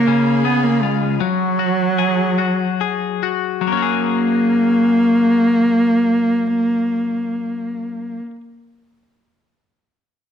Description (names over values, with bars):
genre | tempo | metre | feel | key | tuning
six-eight pop ballad | 45-55 BPM (dotted quarters) | 6/8 | straight | F# major | A4 = 440 Hz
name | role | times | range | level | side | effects
dark cello | melody | 0.0-8.2 s | F#3 to B3 | -17 LUFS | right 2 dB | none
twelve-string electric guitar | accompaniment | 0.0-8.4 s | C#3 to A#4 | -20 LUFS | left 10 dB | none
warm studio string section | sustained chords | 0.0-1.2 s | G#4 to B5 | -30 LUFS | right 2 dB | none
room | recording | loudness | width
wet echo chamber reverb, RT60 1.4 s, small room ambience | 1960s-style stereo | -15 LUFS | side -8 dB against mid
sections
0.0-3.7 A section; 3.7-9.0 B section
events
slowing down 0.0-3.7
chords
0.1 C#7; 1.2 F#sus2; 3.7 F#add9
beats
0.09 | 1.21 2.38 | 3.65 4.98 | 6.31 7.63